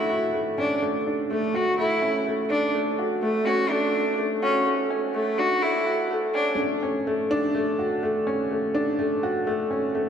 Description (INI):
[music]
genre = electronica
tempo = 125 BPM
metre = 4/4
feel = straight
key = unclear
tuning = A4 = 439 Hz
[part]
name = rich cello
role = melody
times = 0.0-6.6 s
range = A3 to F#4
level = -25 LUFS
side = equal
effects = tape echo
[part]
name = clear upright piano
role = riff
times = 0.0-10.1 s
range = A3 to F#4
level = -24 LUFS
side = equal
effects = tape echo
[sound]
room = wet concert hall reverb, RT60 1.9 s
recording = high-pass filter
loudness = -22 LUFS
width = side -8 dB against mid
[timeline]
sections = 0.0-6.6 A section; 6.6-10.1 B section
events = build-up 0.0-6.6; filter sweep 0.0-6.6; drop 6.6-10.1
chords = 0.0 Aadd11